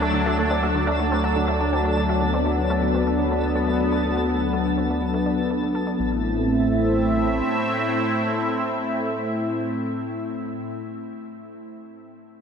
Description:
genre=ambient, sequencer-driven space music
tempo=123 BPM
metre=4/4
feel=straight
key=A dorian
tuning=A4 = 440 Hz
part: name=sweeping resonant pad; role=sustained chords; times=0.0-10.7 s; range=A2 to E5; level=-22 LUFS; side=equal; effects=chorus
part: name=analog pluck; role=riff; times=0.0-6.2 s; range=A2 to A4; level=-32 LUFS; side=equal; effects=chorus, analog delay
part: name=round analog bass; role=bass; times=0.0-7.4 s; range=A1 to D2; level=-27 LUFS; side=equal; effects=none
part: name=twinkling granular texture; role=texture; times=0.0-6.0 s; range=A3 to A4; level=-30 LUFS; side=equal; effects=built-in reverb
part: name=thumb-piano-like synth pluck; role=arpeggios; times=0.1-6.2 s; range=F#4 to A5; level=-36 LUFS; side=right 1 dB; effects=none
room=wet huge ambient reverb, RT60 7.7 s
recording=none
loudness=-20 LUFS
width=side -6 dB against mid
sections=0.0-6.0 A section; 6.0-9.9 B section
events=fade-out on synth arpeggio sound 0.0-6.0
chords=0.0 D; 6.0 Am

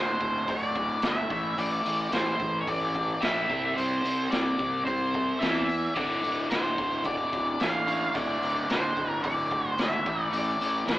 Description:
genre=blues rock power trio and southern rock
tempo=110 BPM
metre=4/4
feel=straight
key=unclear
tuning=A4 = 440 Hz
part: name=octave-fuzz lead guitar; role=melody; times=0.0-11.0 s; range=C5 to F5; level=-29 LUFS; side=equal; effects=distortion
part: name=overdriven electric guitar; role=riff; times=0.0-11.0 s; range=D2 to C4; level=-31 LUFS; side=equal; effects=phaser
part: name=fuzz fingered electric bass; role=bass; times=0.0-11.0 s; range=D1 to E2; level=-32 LUFS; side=equal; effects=overdrive
part: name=raw garage drum kit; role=drums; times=0.2-11.0 s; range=hi-hat, kick drum, snare drum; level=-32 LUFS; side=equal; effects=none
room=moderate small room reverb, RT60 0.5 s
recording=band playing live in one room, AM radio sound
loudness=-25 LUFS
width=side -15 dB against mid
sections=0.0-11.0 A section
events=none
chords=0.0 D5; 1.3 A5; 3.5 C; 6.0 D5; 10.1 A5

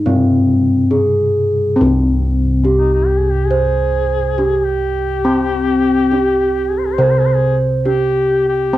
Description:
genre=Javanese gamelan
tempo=69 BPM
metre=4/4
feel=straight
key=C pelog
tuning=A4 = 440 Hz
part: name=gamelan-type bronze metallophone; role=melody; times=0.0-8.8 s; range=C4 to C5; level=-15 LUFS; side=right 1 dB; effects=none
part: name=gamelan-type bronze metallophone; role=accompaniment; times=0.0-1.8 s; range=C3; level=-23 LUFS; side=right 4 dB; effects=cassette tape
part: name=gamelan-type bossed gongs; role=bass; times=0.0-8.8 s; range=C2 to Ab4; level=-17 LUFS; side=equal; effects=none
part: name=warm duduk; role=second line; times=2.8-8.8 s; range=Eb4 to C5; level=-22 LUFS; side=left 9 dB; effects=cassette tape
room=moderate studio reverb, RT60 0.5 s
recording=home recording on cassette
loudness=-12 LUFS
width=side -14 dB against mid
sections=0.0-1.8 A section; 1.8-8.8 B section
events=none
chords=none

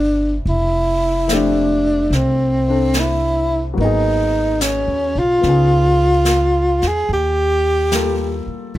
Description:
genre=jazz ballad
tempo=73 BPM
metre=4/4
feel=swing 68% on 8ths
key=unclear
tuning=A4 = 442 Hz
part: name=breathy tenor saxophone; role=melody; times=0.0-8.5 s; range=C4 to G#4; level=-16 LUFS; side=equal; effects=none
part: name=warm upright piano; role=accompaniment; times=0.0-8.8 s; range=F3 to A4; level=-24 LUFS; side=left 6 dB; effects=none
part: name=upright bass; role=bass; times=0.0-8.8 s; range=F1 to E2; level=-20 LUFS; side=equal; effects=none
part: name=jazz brush drum kit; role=drums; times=0.5-8.8 s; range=brushed snare drum, hi-hat, snare drum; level=-25 LUFS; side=right 1 dB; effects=none
room=light reverb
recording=none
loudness=-14 LUFS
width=side -14 dB against mid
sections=0.0-8.8 A section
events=none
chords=0.5 Fmaj9; 3.8 Abm7; 5.4 C#9; 7.1 Ebadd9

